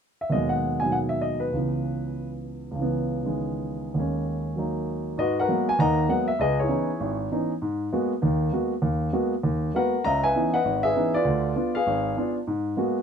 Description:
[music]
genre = jazz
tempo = 198 BPM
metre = 4/4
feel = swing 62% on 8ths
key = G# minor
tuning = A4 = 440 Hz
[part]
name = warm grand piano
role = solo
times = 0.2-13.0 s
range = G#1 to A#5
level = -23 LUFS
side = equal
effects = none
[sound]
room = light reverb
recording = dark, warm production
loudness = -23 LUFS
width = side -7 dB against mid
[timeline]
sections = 0.3-5.2 A section; 5.2-13.0 B section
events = none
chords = 0.3 G#m7/D#; 1.5 C#m7; 4.0 D#7sus4; 5.2 G#m9; 6.4 C#m9; 7.6 G#m9; 10.0 C#m9; 11.3 Ddim7; 12.5 G#m9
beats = 0.02 | 0.33 0.63 0.94 1.24 | 1.54 1.85 2.15 2.46 | 2.76 3.06 3.37 3.67 | 3.97 4.28 4.58 4.88 | 5.19 5.49 5.79 6.09 | 6.40 6.70 7.00 7.31 | 7.61 7.91 8.22 8.52 | 8.82 9.13 9.43 9.73 | 10.04 10.34 10.64 10.95 | 11.25 11.56 11.86 12.16 | 12.47 12.77

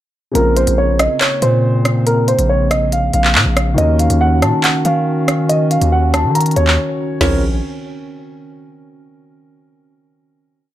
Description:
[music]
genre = hip hop, drill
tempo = 140 BPM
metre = 4/4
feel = half-time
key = Bb minor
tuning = A4 = 440 Hz
[part]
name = dark grand piano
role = accompaniment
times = 0.3-7.4 s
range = Db3 to Bb4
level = -23 LUFS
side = equal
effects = low-pass filter
[part]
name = dark upright piano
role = melody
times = 0.4-7.4 s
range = Bb4 to Bb5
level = -17 LUFS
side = right 1 dB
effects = low-pass filter, ping-pong delay
[part]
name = dark analog pad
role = sustained chords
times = 0.4-7.4 s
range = Db3 to Bb4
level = -22 LUFS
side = equal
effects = chorus
[part]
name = distorted 808-style bass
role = bass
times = 0.4-7.6 s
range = Bb1 to Eb3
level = -16 LUFS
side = equal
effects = distortion
[part]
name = drill drum kit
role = drums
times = 0.4-7.3 s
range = crash cymbal, handclaps, hi-hat, rim click, snare drum, toms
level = -17 LUFS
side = equal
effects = none
[sound]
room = little or no reverb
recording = dark, warm production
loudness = -12 LUFS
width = side -13 dB against mid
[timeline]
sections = 0.4-7.2 hook; 7.2-8.9 final chord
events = break 6.8-7.2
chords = 0.4 Bbmadd9; 3.8 Ebm7; 7.2 Bbmadd9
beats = | 0.35 0.78 1.21 1.64 | 2.07 2.49 2.92 3.35 | 3.78 4.21 4.64 5.07 | 5.49 5.92 6.35 6.78 | 7.21

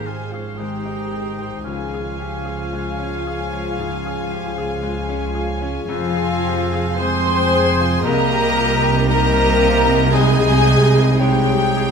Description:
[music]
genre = cinematic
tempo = 57 BPM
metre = 4/4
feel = rubato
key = unclear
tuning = A4 = 441 Hz
[part]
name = warm chamber violin section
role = melody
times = 0.0-11.9 s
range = C5 to Ab5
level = -29 LUFS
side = left 4 dB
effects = none
[part]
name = hollow flute section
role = second line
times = 0.0-11.9 s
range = F5 to C6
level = -28 LUFS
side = left 2 dB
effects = none
[part]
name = warm oboe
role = second line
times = 0.0-11.9 s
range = C4 to Ab4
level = -29 LUFS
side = right 3 dB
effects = none
[part]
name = warm symphonic violin section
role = second line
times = 0.0-11.9 s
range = F5 to C6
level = -27 LUFS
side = left 2 dB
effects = none
[part]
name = bright concert grand piano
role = accompaniment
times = 0.0-11.9 s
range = C2 to C5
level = -28 LUFS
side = left 3 dB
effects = none
[part]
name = dark symphonic viola section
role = accompaniment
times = 0.0-11.9 s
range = F4 to C5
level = -23 LUFS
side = right 1 dB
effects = none
[part]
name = mellow French horn section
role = sustained chords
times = 0.0-11.9 s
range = F3 to C4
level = -26 LUFS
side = left 4 dB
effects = none
[part]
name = concert harp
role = arpeggios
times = 0.0-11.9 s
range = Ab2 to F4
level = -28 LUFS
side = left 14 dB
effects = none
[part]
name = dark chamber cello section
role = bass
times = 0.0-11.9 s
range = Db2 to C3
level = -23 LUFS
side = right 3 dB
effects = none
[part]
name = dark studio double bass section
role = bass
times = 0.0-11.9 s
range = F1 to Db2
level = -24 LUFS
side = right 4 dB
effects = none
[sound]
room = moderate scoring stage reverb, RT60 1.9 s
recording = close, detailed microphones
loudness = -16 LUFS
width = side -6 dB against mid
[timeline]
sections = 0.0-11.9 A section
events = none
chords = 0.0 Ab; 1.6 Db; 5.9 Fmadd9; 8.0 Cm7; 10.1 Ab/C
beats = 0.59 | 1.65 2.71 3.78 4.83 | 5.88 6.99 8.04 9.09 | 10.14 11.20

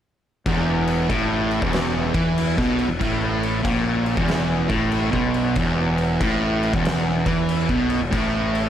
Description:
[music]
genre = stoner and doom metal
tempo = 94 BPM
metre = 4/4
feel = swing 65% on 8ths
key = unclear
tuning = A4 = 439 Hz
[part]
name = fuzz guitar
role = riff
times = 0.5-8.7 s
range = E2 to E3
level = -20 LUFS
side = right 1 dB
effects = distortion
[part]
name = growling fingered electric bass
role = bass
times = 0.5-8.7 s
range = E1 to E2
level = -27 LUFS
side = equal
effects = overdrive
[part]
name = oversized low-tuned drum kit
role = drums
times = 0.5-8.6 s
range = crash cymbal, kick drum, snare drum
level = -26 LUFS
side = left 1 dB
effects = none
[sound]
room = light reverb, studio reverb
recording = none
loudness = -19 LUFS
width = side -10 dB against mid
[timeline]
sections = 0.5-8.7 A section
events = none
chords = 0.5 E5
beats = | 0.45 1.09 1.73 2.37 | 3.01 3.65 4.29 4.93 | 5.57 6.21 6.85 7.49 | 8.12

